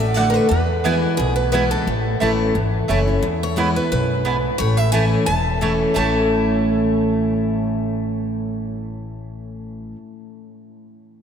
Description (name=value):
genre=bluegrass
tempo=176 BPM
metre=4/4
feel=swing 55% on 8ths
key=A major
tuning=A4 = 443 Hz
part: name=picked steel-string acoustic guitar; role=melody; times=0.0-9.9 s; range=G#4 to A5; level=-25 LUFS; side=right 1 dB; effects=none
part: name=picked steel-string acoustic guitar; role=accompaniment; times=0.0-10.0 s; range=E2 to F#4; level=-21 LUFS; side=left 1 dB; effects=none
part: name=upright bass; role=bass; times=0.0-9.9 s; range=E1 to E2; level=-23 LUFS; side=left 1 dB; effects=none
part: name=mandolin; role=stabs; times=0.2-10.0 s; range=A3 to A5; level=-25 LUFS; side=right 4 dB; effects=none
room=wet cathedral reverb, RT60 6.4 s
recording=in a vast, echoing space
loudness=-17 LUFS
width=side -8 dB against mid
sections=0.0-3.2 A section; 3.2-6.0 B section; 6.0-8.7 C section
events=none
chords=0.0 D; 0.5 E; 1.9 A; 3.2 E; 4.6 A